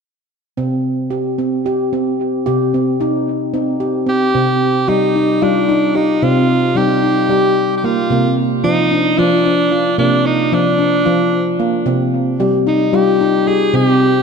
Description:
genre	world meditative, meditative tuned percussion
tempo	224 BPM (eighths)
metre	7/8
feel	straight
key	C minor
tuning	A4 = 437 Hz
part	handpan	arpeggios	0.6-14.2 s	C3 to G4	-14 LUFS	left 1 dB	analog delay
part	edgy alto saxophone	melody	4.1-14.2 s	D4 to Ab4	-17 LUFS	right 2 dB	analog delay
room	wet plate reverb, RT60 2.7 s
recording	echo-heavy mix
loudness	-13 LUFS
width	side -5 dB against mid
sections	0.6-4.3 A section; 4.3-14.2 B section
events	none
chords	0.6 Cm; 8.1 Bb/C; 11.9 Cm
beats	| 0.58 0.85 1.12 1.39 1.66 1.93 2.19 | 2.46 2.73 3.00 3.27 3.54 3.81 4.08 | 4.35 4.62 4.89 5.15 5.42 5.69 5.96 | 6.23 6.50 6.77 7.04 7.30 7.57 7.84 | 8.11 8.38 8.64 8.91 9.18 9.45 9.72 | 9.99 10.26 10.52 10.79 11.06 11.33 11.60 | 11.87 12.13 12.40 12.67 12.94 13.21 13.47 | 13.74 14.01

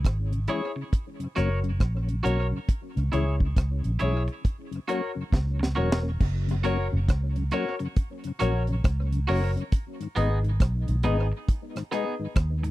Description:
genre	roots reggae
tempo	68 BPM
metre	4/4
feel	swing 63% on 16ths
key	unclear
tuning	A4 = 438 Hz
part	vintage muted fingered electric bass	bass	0.0-12.7 s	E1 to D#2	-25 LUFS	equal	none
part	deep reggae drum kit	drums	0.0-12.7 s	crash cymbal, hi-hat, kick drum, rim click, snare drum	-26 LUFS	equal	tape echo
part	mellow tonewheel organ	accompaniment	0.3-12.7 s	F#2 to D#4	-34 LUFS	left 2 dB	chorus vibrato, slow rotary speaker, tape echo
part	twangy electric guitar	accompaniment	0.5-12.7 s	B3 to C#5	-35 LUFS	right 4 dB	warbly pitch drift, tape echo
part	dark grand piano	stabs	0.5-12.3 s	E4 to D#5	-31 LUFS	left 5 dB	none
room	little or no reverb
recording	dry, close 1970s-style studio recording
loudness	-24 LUFS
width	side -16 dB against mid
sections	0.0-6.2 A section; 6.2-12.7 B section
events	drum fill 5.3-6.2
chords	0.0 C#m; 0.9 F#; 2.7 C#m; 4.4 F#; 9.7 G#m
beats	0.04 0.92 1.80 | 2.68 3.56 4.45 5.32 | 6.20 7.08 7.96 8.84 | 9.72 10.60 11.48 12.36

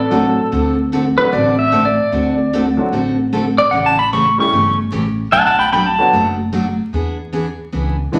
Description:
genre	country, western swing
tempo	150 BPM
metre	4/4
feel	swing 67% on 8ths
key	unclear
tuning	A4 = 440 Hz
part	pedal steel guitar	second line	0.0-6.2 s	A4 to C#6	-17 LUFS	equal	none
part	upright bass	bass	0.0-8.2 s	F#1 to E2	-26 LUFS	equal	none
part	picked steel-string acoustic guitar	accompaniment	0.1-8.2 s	B2 to A4	-20 LUFS	equal	none
part	warm upright piano	accompaniment	0.1-8.2 s	E3 to G4	-23 LUFS	equal	none
room	wet large studio reverb, RT60 0.9 s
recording	vinyl crackle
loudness	-16 LUFS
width	mono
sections	0.0-8.2 A section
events	pedal steel guitar solo 0.0-8.2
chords	0.0 D7; 3.7 A7; 5.3 Bm7; 6.9 E7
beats	0.12 | 0.52 0.92 1.32 1.72 | 2.12 2.52 2.92 3.32 | 3.72 4.12 4.52 4.92 | 5.33 5.73 6.13 6.53 | 6.93 7.33 7.73 8.13

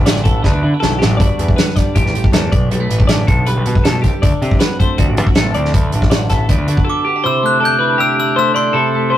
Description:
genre	math rock and midwest emo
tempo	159 BPM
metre	4/4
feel	straight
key	unclear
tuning	A4 = 439 Hz
part	twelve-string electric guitar	accompaniment	0.0-9.2 s	F#2 to A4	-21 LUFS	right 2 dB	vibrato effect
part	twelve-string electric guitar	arpeggios	0.0-9.2 s	F#4 to D5	-20 LUFS	left 3 dB	none
part	growling picked electric bass	bass	0.0-6.8 s	G1 to D3	-17 LUFS	equal	overdrive
part	loose indie drum kit	drums	0.1-6.9 s	hi-hat, kick drum, snare drum	-14 LUFS	equal	none
part	glockenspiel with brass mallets	melody	6.9-9.2 s	C6 to G6	-16 LUFS	right 1 dB	none
room	light reverb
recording	rough rehearsal-room recording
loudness	-12 LUFS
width	side -12 dB against mid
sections	0.0-7.2 A section; 7.2-9.2 B section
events	drum fill 0.5-1.2; break 6.9-7.2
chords	0.0 Bm7; 1.2 Gmaj7; 2.0 Am7; 2.5 Bm7; 3.3 G/B; 4.2 D7; 5.7 Bm7; 7.2 C69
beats	0.07 0.45 0.83 | 1.21 1.58 1.96 2.34 | 2.72 3.10 3.47 3.85 | 4.23 4.61 4.98 5.36 | 5.74 6.11 6.49 6.87 | 7.24 7.62 7.99 8.37 | 8.74 9.12

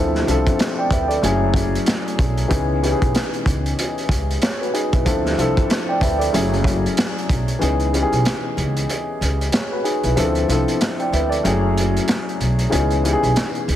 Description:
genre	hip hop, boom-bap hip-hop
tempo	94 BPM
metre	4/4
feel	swing 59% on 16ths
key	C# minor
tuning	A4 = 440 Hz
part	dark baby grand piano	accompaniment	0.0-13.8 s	E3 to G5	-20 LUFS	left 1 dB	cassette tape, high-pass filter, low-pass filter
part	upright bass	bass	0.0-13.8 s	F#1 to D2	-22 LUFS	equal	none
part	crunchy breakbeat drum kit	drums	0.1-13.8 s	hi-hat, kick drum, snare drum	-22 LUFS	equal	none
room	light reverb, small room ambience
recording	heavily compressed radio sound, multiband compression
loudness	-17 LUFS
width	side -11 dB against mid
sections	0.0-7.6 A section; 7.6-13.8 A section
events	kick muted 7.6-13.8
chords	0.0 Dm9; 1.2 F#m9; 2.5 C#m9; 5.1 Dm9; 6.3 F#m9; 7.6 C#m9; 10.2 Dm9; 11.4 F#m9; 12.7 C#m9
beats	0.59 1.23 1.87 | 2.51 3.14 3.78 4.42 | 5.06 5.70 6.34 6.97 | 7.61 8.25 8.89 9.53 | 10.16 10.80 11.44 12.08 | 12.72 13.36

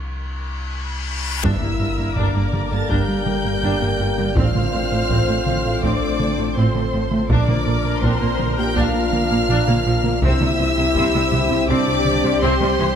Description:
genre	cinematic, hybrid orchestral and electronic film score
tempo	82 BPM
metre	4/4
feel	straight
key	G dorian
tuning	A4 = 442 Hz
part	saturated sub bass	bass	0.0-13.0 s	G1 to C2	-28 LUFS	left 1 dB	none
part	reverse cymbal and impact	sound effects	0.0-4.4 s	none	-29 LUFS	left 2 dB	none
part	warm symphonic violin section	melody	1.4-13.0 s	C6 to A6	-27 LUFS	left 1 dB	none
part	rich chamber violin section	second line	1.4-13.0 s	C5 to A5	-28 LUFS	left 1 dB	none
part	rich symphonic viola section	accompaniment	1.4-13.0 s	E3 to C5	-26 LUFS	equal	none
part	clear trombone section	sustained chords	1.4-13.0 s	D3 to D4	-29 LUFS	right 3 dB	none
part	dark French horn section	sustained chords	1.4-13.0 s	C4 to A4	-25 LUFS	left 6 dB	none
part	ethereal airy pad	sustained chords	2.1-13.0 s	G3 to D5	-28 LUFS	equal	ensemble chorus, built-in reverb
part	smooth synth bass	riff	1.4-12.9 s	C2 to Bb3	-25 LUFS	right 2 dB	none
part	warm studio double bass section	bass	1.4-12.9 s	G1 to C2	-26 LUFS	right 2 dB	none
part	warm symphonic cello section	bass	1.4-12.9 s	G2 to C3	-27 LUFS	right 3 dB	none
part	taiko ensemble	drums	1.4-12.9 s	none	-25 LUFS	equal	none
room	light reverb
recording	none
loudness	-17 LUFS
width	side -8 dB against mid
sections	0.0-1.4 A section; 1.4-13.0 B section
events	break 0.0-1.4; reverse cymbal 0.0-1.4; drum fill 0.7-1.4; impact 1.4-4.4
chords	0.0 N.C.; 1.4 Gm; 4.4 F/A; 7.3 Bb; 10.2 C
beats	0.71 | 1.44 2.18 2.91 3.64 | 4.37 5.10 5.83 6.57 | 7.30 8.03 8.76 9.49 | 10.22 10.96 11.69 12.42

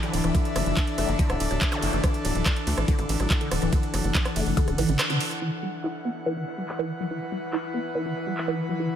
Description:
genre	psychedelic trance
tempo	142 BPM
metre	4/4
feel	straight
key	unclear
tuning	A4 = 440 Hz
part	vowel-sweep wobble bass	second line	0.0-1.4 s	F#3	-42 LUFS	right 2 dB	none
part	evolving wavetable pad	sustained chords	0.0-9.0 s	E3	-33 LUFS	left 1 dB	chorus, built-in reverb, sidechain pumping
part	woody wave-folded pluck	riff	0.0-8.9 s	D3 to E4	-30 LUFS	moving between left 7 dB and right 3 dB	chorus, auto-pan, sidechain pumping, dub echo
part	garage drum kit	drums	0.0-8.5 s	handclaps, hi-hat, ride cymbal, rim click	-30 LUFS	right 1 dB	overdrive, low-pass filter on hats, low-pass filter on snare, low-pass filter on cymbals
part	airy breathy pad	texture	0.0-9.0 s	D4 to F#5	-32 LUFS	left 2 dB	chorus, sidechain pumping
part	tight sequencer bass	bass	0.1-5.0 s	D1 to D2	-27 LUFS	equal	none
part	electronic kick drum	drums	0.3-4.7 s	none	-24 LUFS	equal	overdrive
part	zap	sound effects	1.7-1.8 s	none	-33 LUFS	equal	none
room	light reverb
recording	none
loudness	-23 LUFS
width	side -9 dB against mid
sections	0.0-5.4 A section; 5.4-9.0 B section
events	drop 0.0-5.4; band accent 5.0; filter sweep on drum 5.4-9.0; filter sweep on synth arpeggio sound 5.4-9.0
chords	0.0 D5; 5.4 E5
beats	| 0.35 0.77 1.19 1.61 | 2.04 2.46 2.88 3.30 | 3.73 4.15 4.57 4.99 | 5.42 5.84 6.26 6.68 | 7.11 7.53 7.95 8.37 | 8.80

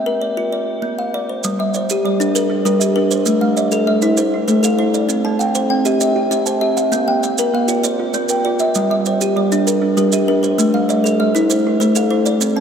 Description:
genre	southern african traditional, mbira-style interlocking cycle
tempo	131 BPM (dotted quarters)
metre	12/8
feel	straight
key	G equiheptatonic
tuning	A4 = 439 Hz
part	kalimba	arpeggios	0.0-12.6 s	G3 to A5-29c	-16 LUFS	left 2 dB	none
part	maracas	percussion	1.4-12.6 s	none	-24 LUFS	right 8 dB	none
part	kalimba	arpeggios	1.6-12.6 s	G3 to A5-29c	-19 LUFS	right 6 dB	none
room	wet cathedral reverb, RT60 7.3 s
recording	in a vast, echoing space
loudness	-14 LUFS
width	side -7 dB against mid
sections	0.0-1.4 A section; 1.4-12.6 B section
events	none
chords	0.0 Bb; 1.4 Gm; 3.3 Am; 5.1 C; 6.9 Bb; 8.8 Gm; 10.6 Am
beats	0.06 0.52 0.98 | 1.44 1.89 2.35 2.81 | 3.27 3.72 4.18 4.63 | 5.09 5.55 6.01 6.46 | 6.92 7.38 7.84 8.30 | 8.75 9.21 9.67 10.13 | 10.59 11.04 11.50 11.96 | 12.42

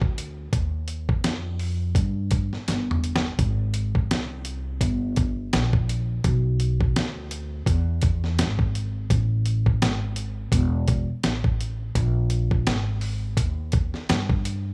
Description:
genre	hip hop, jazz-hop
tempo	84 BPM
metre	4/4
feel	swing 57% on 16ths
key	unclear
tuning	A4 = 441 Hz
part	upright bass	bass	0.0-14.7 s	E1 to G2	-27 LUFS	equal	none
part	dusty soul sampler-style drum kit	drums	0.0-14.6 s	hi-hat, kick drum, snare drum, toms	-26 LUFS	equal	none
room	little or no reverb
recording	studio ambience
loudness	-25 LUFS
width	mono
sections	0.0-14.7 A section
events	drum fill 2.7-3.4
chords	none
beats	| 0.53 1.24 1.96 2.67 | 3.38 4.10 4.81 5.53 | 6.24 6.96 7.67 8.38 | 9.10 9.81 10.53 11.24 | 11.96 12.67 13.38 14.10

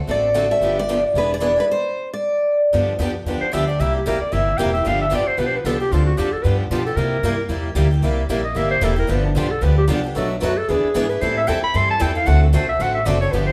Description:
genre	acoustic string swing (jazz manouche)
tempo	226 BPM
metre	4/4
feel	swing 57% on 8ths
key	G mixolydian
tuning	A4 = 439 Hz
part	picked steel-string acoustic guitar	melody	0.1-2.6 s	B4 to E5	-21 LUFS	equal	none
part	picked steel-string acoustic guitar	accompaniment	0.1-13.5 s	B2 to B4	-28 LUFS	equal	none
part	picked swing-style acoustic guitar	accompaniment	0.1-13.5 s	B2 to A4	-29 LUFS	equal	none
part	upright bass	bass	0.1-13.5 s	E1 to C3	-23 LUFS	equal	none
part	clear clarinet	second line	3.3-13.5 s	D4 to C6	-24 LUFS	equal	none
room	wet large studio reverb, RT60 1.1 s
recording	band playing live in one room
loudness	-19 LUFS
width	mono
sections	0.0-2.7 A section; 2.7-13.5 B section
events	clarinet solo 2.7-13.5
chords	0.0 D7; 0.6 G7; 1.1 E7; 1.7 N.C.; 2.7 G7; 3.8 C7; 4.9 G7; 5.9 Dm7; 6.4 G7; 7.0 C7; 9.1 G7; 10.2 Bm7; 10.7 E7; 11.2 Am7; 12.3 D7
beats	0.09 0.35 | 0.62 0.88 1.15 1.41 | 1.68 1.94 2.21 2.47 | 2.73 3.00 3.27 3.53 | 3.79 4.06 4.33 4.59 | 4.86 5.12 5.38 5.65 | 5.91 6.18 6.44 6.71 | 6.97 7.24 7.50 7.77 | 8.03 8.30 8.56 8.83 | 9.09 9.36 9.62 9.89 | 10.15 10.42 10.68 10.95 | 11.21 11.48 11.74 12.01 | 12.27 12.54 12.80 13.06 | 13.33

